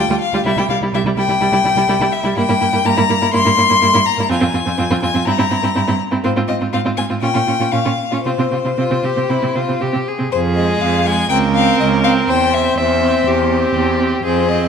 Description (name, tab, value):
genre	quick classical-period movement for string quartet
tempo	123 BPM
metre	4/4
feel	rubato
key	unclear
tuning	A4 = 439 Hz
part	rich violin	melody	0.0-14.7 s	C5 to C6	-18 LUFS	left 7 dB	none
part	rich violin	second line	0.0-14.7 s	E4 to E5	-21 LUFS	left 1 dB	none
part	rich viola	accompaniment	0.0-14.7 s	G3 to Db4	-20 LUFS	right 3 dB	none
part	rich cello	bass	0.0-14.7 s	C2 to C3	-20 LUFS	right 5 dB	none
room	moderate scoring stage reverb, RT60 1.7 s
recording	none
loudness	-13 LUFS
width	side -7 dB against mid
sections	0.0-10.3 A section; 10.3-14.7 B section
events	none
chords	0.5 C; 2.4 C7/G; 4.3 Fm; 5.3 C7/G; 6.2 Fm/Ab; 7.2 Gm7b5/Bb; 8.3 Csus4; 10.3 Fm; 11.3 Dbmaj13; 12.3 C/E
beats	| 0.46 0.94 1.41 1.89 | 2.38 2.86 3.34 3.82 | 4.30 4.79 5.27 5.76 | 6.25 6.74 7.23 7.73 | 8.25 8.78 9.29 9.81 | 10.32 10.82 11.31 11.81 | 12.29 12.78 13.27 13.76 | 14.24